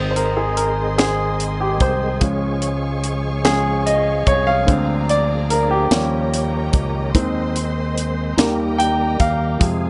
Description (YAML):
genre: slow gospel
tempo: 49 BPM (dotted quarters)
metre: 6/8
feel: straight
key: Ab major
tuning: A4 = 438 Hz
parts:
  - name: warm grand piano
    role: accompaniment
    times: 0.0-9.9 s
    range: C3 to G5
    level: -22 LUFS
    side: equal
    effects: plate reverb
  - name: bright tonewheel organ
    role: sustained chords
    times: 0.0-9.9 s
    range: C3 to C5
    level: -30 LUFS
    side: equal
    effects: fast rotary speaker, chorus vibrato, plate reverb
  - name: warm studio string section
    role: sustained chords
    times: 0.0-9.9 s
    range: Ab4 to Db6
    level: -33 LUFS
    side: equal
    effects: plate reverb
  - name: fingered electric bass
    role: bass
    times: 0.0-9.9 s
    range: Ab1 to F2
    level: -25 LUFS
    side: equal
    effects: none
  - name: tight funk drum kit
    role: drums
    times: 0.2-9.8 s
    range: hi-hat, kick drum, snare drum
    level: -22 LUFS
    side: equal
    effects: none
room: moderate large studio reverb, RT60 0.8 s, studio ambience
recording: nothing above 11.0 kHz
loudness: -19 LUFS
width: mono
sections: 0.0-9.9 A section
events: grand piano solo 0.0-9.9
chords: 0.0 Ab; 2.2 Db; 4.7 Bb7/D; 5.9 Eb7; 7.1 Ab/Eb; 8.4 Eb